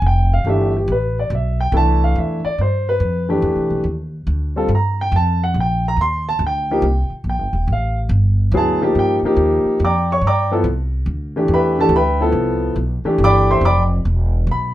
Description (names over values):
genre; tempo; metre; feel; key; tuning
modal jazz; 141 BPM; 4/4; swing 66% on 8ths; C major; A4 = 440 Hz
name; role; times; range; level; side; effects
warm concert grand piano; accompaniment; 0.0-14.7 s; E3 to D6; -17 LUFS; equal; none
upright bass; bass; 0.0-14.7 s; Eb1 to G2; -18 LUFS; equal; none
room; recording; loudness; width
light reverb; dark, warm production; -15 LUFS; side -14 dB against mid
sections
0.0-14.7 A section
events
none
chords
0.0 Cmaj9; 3.9 Ebmaj9; 10.6 Cmaj9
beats
0.03 | 0.46 0.88 1.30 1.73 | 2.15 2.58 3.00 3.43 | 3.85 4.28 4.70 5.13 | 5.55 5.98 6.40 6.83 | 7.25 7.67 8.10 8.53 | 8.95 9.37 9.80 10.22 | 10.65 11.07 11.50 11.92 | 12.35 12.77 13.20 13.62 | 14.05 14.47